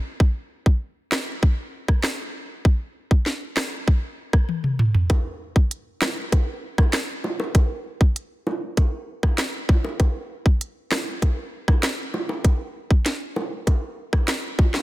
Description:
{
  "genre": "dancehall",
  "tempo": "98 BPM",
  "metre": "4/4",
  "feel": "straight",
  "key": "none",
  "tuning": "none",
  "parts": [
    { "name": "island pop drum kit", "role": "drums", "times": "0.2-14.8 s", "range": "hi-hat, kick drum, rim click, snare drum, toms", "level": "-19 LUFS", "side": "equal", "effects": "none" },
    { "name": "bongos", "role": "percussion", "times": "5.1-14.8 s", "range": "none", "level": "-30 LUFS", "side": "right 1 dB", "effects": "none" }
  ],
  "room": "digital ambience",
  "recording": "dense, heavily limited modern master",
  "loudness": "-20 LUFS",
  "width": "side -18 dB against mid",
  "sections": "0.0-5.1 A section; 5.1-14.8 B section",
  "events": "drum fill 4.5-5.1",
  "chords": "none"
}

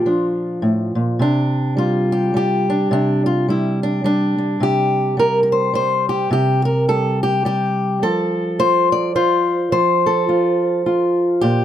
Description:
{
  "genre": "folk, solo fingerstyle acoustic guitar",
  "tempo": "106 BPM",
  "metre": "3/4",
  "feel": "swing 59% on 8ths",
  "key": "unclear",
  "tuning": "A4 = 441 Hz",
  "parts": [
    { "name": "fingerpicked old ladder-braced acoustic guitar", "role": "solo", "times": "0.0-11.6 s", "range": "A2 to D5", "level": "-15 LUFS", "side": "equal", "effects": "none" }
  ],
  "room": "light reverb",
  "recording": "close, detailed microphones",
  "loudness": "-15 LUFS",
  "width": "side -10 dB against mid",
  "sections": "0.0-1.2 A section; 1.2-11.6 A section",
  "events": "none",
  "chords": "0.0 Bb; 1.2 C5; 8.0 N.C."
}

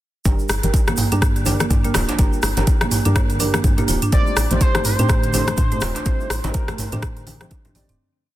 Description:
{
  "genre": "afro house",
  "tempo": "124 BPM",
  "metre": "4/4",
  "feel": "swing 58% on 16ths",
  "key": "G minor",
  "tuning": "A4 = 440 Hz",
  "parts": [
    { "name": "buzzing marimba with medium mallets", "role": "arpeggios", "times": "0.3-8.0 s", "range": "D3 to F4", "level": "-27 LUFS", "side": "right 1 dB", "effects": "sidechain pumping, ping-pong delay" },
    { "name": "deep mellow chord stab", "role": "stabs", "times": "0.3-7.9 s", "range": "A3 to D5", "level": "-29 LUFS", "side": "right 4 dB", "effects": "chorus, phaser, sidechain pumping, ping-pong delay" },
    { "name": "woody FM bass", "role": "bass", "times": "0.3-8.0 s", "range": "D1 to A2", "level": "-23 LUFS", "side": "equal", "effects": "sidechain pumping" },
    { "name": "afro-pop drum kit", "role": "drums", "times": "0.3-8.0 s", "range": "hi-hat, rim click, toms", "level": "-23 LUFS", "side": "equal", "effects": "soft clipping on snare" },
    { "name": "electronic kick drum", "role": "drums", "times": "0.3-7.6 s", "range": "none", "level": "-18 LUFS", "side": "equal", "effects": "none" },
    { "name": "djembe", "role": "percussion", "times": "0.3-7.9 s", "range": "none", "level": "-30 LUFS", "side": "right 1 dB", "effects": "none" },
    { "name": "egg shaker", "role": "percussion", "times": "0.3-8.0 s", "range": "none", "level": "-33 LUFS", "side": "right 3 dB", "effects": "none" },
    { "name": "congas", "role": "percussion", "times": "0.6-7.9 s", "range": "none", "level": "-28 LUFS", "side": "left 4 dB", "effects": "none" },
    { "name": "expressive synth lead", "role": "melody", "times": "4.1-7.5 s", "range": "C5 to D5", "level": "-27 LUFS", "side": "equal", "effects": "analog chorus, ping-pong delay" }
  ],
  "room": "small room ambience",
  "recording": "dense, heavily limited modern master",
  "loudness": "-16 LUFS",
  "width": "side -14 dB against mid",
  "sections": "0.3-8.0 drop",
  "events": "drop 0.3-8.0; fade-out 5.4-8.0",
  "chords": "0.3 Gm; 4.1 Am7b5"
}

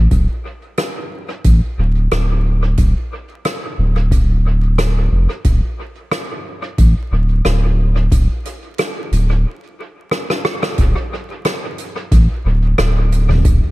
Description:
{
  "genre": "ambient dub",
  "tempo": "90 BPM",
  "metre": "4/4",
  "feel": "straight",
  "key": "D minor",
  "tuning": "A4 = 440 Hz",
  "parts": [
    { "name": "warm sub bass", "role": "bass", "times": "0.0-13.6 s", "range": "D1 to A1", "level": "-13 LUFS", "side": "equal", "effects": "none" },
    { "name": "electronic kick drum", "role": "drums", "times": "0.1-13.6 s", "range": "none", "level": "-16 LUFS", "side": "equal", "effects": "none" },
    { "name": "soft-mallet drum kit", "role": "drums", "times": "0.1-13.6 s", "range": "hi-hat, rim click, toms", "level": "-22 LUFS", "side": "equal", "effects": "dub echo" }
  ],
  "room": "little or no reverb",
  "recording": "vinyl crackle",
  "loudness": "-14 LUFS",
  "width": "side -19 dB against mid",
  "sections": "0.0-10.8 A section; 10.8-13.7 B section",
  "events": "stop 9.4-10.8; drum fill 10.1-10.8",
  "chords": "none"
}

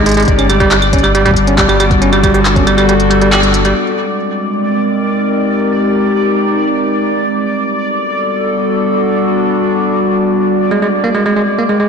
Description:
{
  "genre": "IDM",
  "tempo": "138 BPM",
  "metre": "4/4",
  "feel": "straight",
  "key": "unclear",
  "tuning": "A4 = 440 Hz",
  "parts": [
    { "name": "warbly tape-like pad", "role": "sustained chords", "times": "0.0-11.9 s", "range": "G3 to Bb4", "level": "-14 LUFS", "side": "left 1 dB", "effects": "chorus, built-in reverb" },
    { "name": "bell-like tine electric piano", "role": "arpeggios", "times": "0.0-3.7, 10.7-11.9 s", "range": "G3 to G4", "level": "-13 LUFS", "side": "right 2 dB", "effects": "vintage 12-bit sampler grit, ping-pong delay" },
    { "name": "round analog bass", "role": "bass", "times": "0.0-3.7 s", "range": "G1 to Ab1", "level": "-15 LUFS", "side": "left 1 dB", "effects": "none" },
    { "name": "bubbling stepped-filter texture", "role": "texture", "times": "0.0-11.9 s", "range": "D5", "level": "-19 LUFS", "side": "equal", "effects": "chorus, built-in reverb" },
    { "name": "organic electronic drum kit", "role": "drums", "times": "0.1-3.7 s", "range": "claves, handclaps, hi-hat", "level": "-17 LUFS", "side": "equal", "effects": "overdrive, ping-pong delay" },
    { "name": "electronic kick drum", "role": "drums", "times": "0.3-2.6 s", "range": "none", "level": "-16 LUFS", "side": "left 1 dB", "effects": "overdrive" }
  ],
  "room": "wet lush hall reverb, RT60 1.9 s, digital ambience",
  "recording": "blown-out, overdriven recording, overdrive",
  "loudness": "-10 LUFS",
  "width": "side -6 dB against mid",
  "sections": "0.0-3.8 A section; 3.8-11.9 B section",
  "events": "kick drops out 2.9-3.8; band accent 3.3",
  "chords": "0.3 Gmaj9; 3.8 Abmaj9; 7.2 Gmaj9; 10.7 Abmaj7"
}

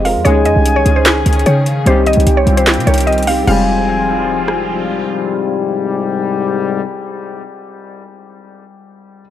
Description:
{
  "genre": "hip hop, trap",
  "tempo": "149 BPM",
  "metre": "4/4",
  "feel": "half-time",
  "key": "F minor",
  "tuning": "A4 = 441 Hz",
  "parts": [
    { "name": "mallet-like synth pluck", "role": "melody", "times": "0.0-4.6 s", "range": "C5 to F5", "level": "-18 LUFS", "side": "right 1 dB", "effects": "chorus, low-pass filter, dub echo" },
    { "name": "dark concert grand piano", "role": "accompaniment", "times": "0.0-9.2 s", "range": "G3 to Bb4", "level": "-21 LUFS", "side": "left 1 dB", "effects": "low-pass filter" },
    { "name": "sweeping resonant pad", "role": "sustained chords", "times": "0.0-6.8 s", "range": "Eb3 to Ab4", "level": "-23 LUFS", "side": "right 1 dB", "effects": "chorus" },
    { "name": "short 808-style bass", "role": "bass", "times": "0.0-5.0 s", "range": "F1 to Db3", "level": "-14 LUFS", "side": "equal", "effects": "none" },
    { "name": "trap drum kit", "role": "drums", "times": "0.1-4.6 s", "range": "crash cymbal, handclaps, hi-hat, rim click, snare drum", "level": "-18 LUFS", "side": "equal", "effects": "overdrive" },
    { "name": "mellow silver concert flute", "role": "second line", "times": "0.3-4.6 s", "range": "F5 to Ab5", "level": "-22 LUFS", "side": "left 2 dB", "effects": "dub echo" },
    { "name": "mellow brass ensemble", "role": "stabs", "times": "0.3-6.8 s", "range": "C2 to Ab3", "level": "-20 LUFS", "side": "left 6 dB", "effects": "dub echo" }
  ],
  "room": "light reverb, small room ambience",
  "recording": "echo-heavy mix",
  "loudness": "-11 LUFS",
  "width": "side -11 dB against mid",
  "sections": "0.0-3.5 A section; 3.5-6.7 B section",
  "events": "none",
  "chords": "0.3 Dbsus2; 1.9 Cm; 3.5 Fmadd9"
}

